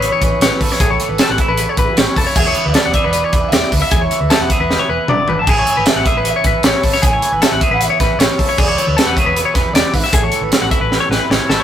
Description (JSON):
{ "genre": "math rock and midwest emo", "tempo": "154 BPM", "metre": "4/4", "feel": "straight", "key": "A major", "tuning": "A4 = 439 Hz", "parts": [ { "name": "electric guitar through a small old amp", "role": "melody", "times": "0.0-11.3 s", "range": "A4 to A5", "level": "-20 LUFS", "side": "right 2 dB", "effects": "none" }, { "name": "twangy electric guitar", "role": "accompaniment", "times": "0.0-11.6 s", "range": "E2 to G#4", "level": "-23 LUFS", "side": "right 2 dB", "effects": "phaser" }, { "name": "twelve-string electric guitar", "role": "arpeggios", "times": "0.0-11.6 s", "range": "G#4 to F#5", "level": "-18 LUFS", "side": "left 4 dB", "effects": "none" }, { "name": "hollow-body short-scale fingered electric bass", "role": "bass", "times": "0.0-11.6 s", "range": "E1 to D2", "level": "-23 LUFS", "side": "equal", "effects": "none" }, { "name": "crisp fusion drum kit", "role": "drums", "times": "0.0-11.6 s", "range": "crash cymbal, hi-hat, kick drum, snare drum, toms", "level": "-15 LUFS", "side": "right 1 dB", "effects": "none" } ], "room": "moderate stone room reverb, RT60 1.1 s", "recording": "rough rehearsal-room recording, warm saturation", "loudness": "-12 LUFS", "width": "side -10 dB against mid", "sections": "0.0-11.6 A section", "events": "drum fill 4.7-5.5, 10.9-11.6", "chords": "0.0 Amaj7; 2.4 E7; 5.5 Amaj7; 8.6 E7; 10.1 Amaj7" }